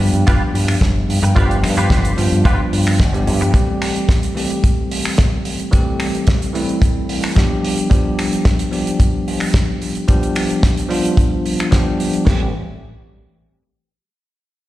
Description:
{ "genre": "nu-disco, nu disco", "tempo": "110 BPM", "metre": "4/4", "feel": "straight", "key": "A minor", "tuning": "A4 = 440 Hz", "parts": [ { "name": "bell-like tine electric piano", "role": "accompaniment", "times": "0.0-12.5 s", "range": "E3 to G4", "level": "-19 LUFS", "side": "equal", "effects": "medium stereo tremolo, sidechain pumping, slapback echo" }, { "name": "fingered electric bass with an envelope filter", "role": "bass", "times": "0.0-3.5, 12.3-12.5 s", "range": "G1 to G2", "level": "-17 LUFS", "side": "equal", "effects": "none" }, { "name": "damped 70s drum kit", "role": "drums", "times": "0.0-12.2 s", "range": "finger snaps, hi-hat, snare drum", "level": "-23 LUFS", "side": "right 1 dB", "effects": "none" }, { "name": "direct-recorded clean electric guitar", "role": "riff", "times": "0.3-3.4 s", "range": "F4 to B4", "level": "-23 LUFS", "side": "right 1 dB", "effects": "ensemble chorus, slapback echo" }, { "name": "damped 70s drum kit", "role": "drums", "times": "0.3-12.4 s", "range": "crash cymbal, kick drum, snare drum", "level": "-14 LUFS", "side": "equal", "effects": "none" } ], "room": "little or no reverb", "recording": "played on a big sound system in a bare room, stone room reverb", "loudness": "-14 LUFS", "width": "side -15 dB against mid", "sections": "0.0-12.3 A section; 12.3-14.5 B section", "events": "none", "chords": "0.0 G7; 3.5 Am7; 7.6 G7; 12.3 Am7" }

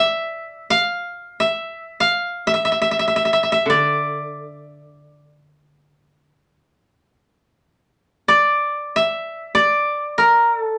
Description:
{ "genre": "japanese traditional, Japanese chamber music", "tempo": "free time", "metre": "none", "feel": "none", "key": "D hirajoshi", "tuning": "A4 = 440 Hz", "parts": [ { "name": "koto", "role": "melody", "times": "0.0-10.8 s", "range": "Bb4 to F5", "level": "-19 LUFS", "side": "equal", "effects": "none" }, { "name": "koto", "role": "accompaniment", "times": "3.7-6.6 s", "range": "D3", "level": "-28 LUFS", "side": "equal", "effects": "none" } ], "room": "wet small room ambience, RT60 0.5 s", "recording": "none", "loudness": "-19 LUFS", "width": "mono", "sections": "0.0-10.8 A section", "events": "none", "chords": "none" }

